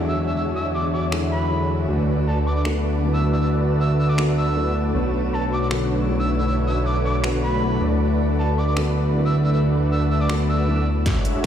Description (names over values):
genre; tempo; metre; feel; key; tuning
future bass; 157 BPM; 4/4; half-time; D lydian; A4 = 440 Hz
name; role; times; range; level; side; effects
felt-muted upright piano; accompaniment; 0.0-11.1 s; D3 to C#5; -28 LUFS; left 3 dB; sidechain pumping, ping-pong delay
ethereal airy pad; sustained chords; 0.1-11.5 s; D3 to B5; -34 LUFS; right 1 dB; ensemble chorus, built-in reverb, sidechain pumping
supersaw chords; riff; 0.0-11.5 s; G#3 to E5; -25 LUFS; equal; sidechain pumping, low-pass filter
fat analog bass; bass; 0.0-11.0 s; B1 to E2; -21 LUFS; equal; sidechain pumping
downlifter and riser; sound effects; 0.0-1.9, 11.1-11.5 s; none; -44 LUFS; left 1 dB; none
breathy flute-like synth lead; melody; 0.1-11.5 s; A5 to E6; -29 LUFS; equal; chorus, cassette tape, sidechain pumping, ping-pong delay
dubstep drum kit; drums; 1.1-11.5 s; finger snaps, hi-hat, snare drum; -34 LUFS; left 1 dB; high-pass filter on hats, high-pass filter on snare, high-pass filter on toms
electronic kick drum; drums; 11.1 s; none; -21 LUFS; equal; none
room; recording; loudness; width
light reverb; played on a big sound system in a bare room, large studio reverb; -18 LUFS; side -9 dB against mid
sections
0.0-11.1 A section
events
drum fill 11.1-11.5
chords
0.0 E13; 1.9 D6; 4.9 Bm9; 7.8 D6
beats
| 0.36 0.74 1.12 1.50 | 1.89 2.27 2.65 3.03 | 3.42 3.80 4.18 4.56 | 4.95 5.33 5.71 6.09 | 6.47 6.86 7.24 7.62 | 8.00 8.38 8.77 9.15 | 9.53 9.91 10.29 10.68 | 11.06 11.44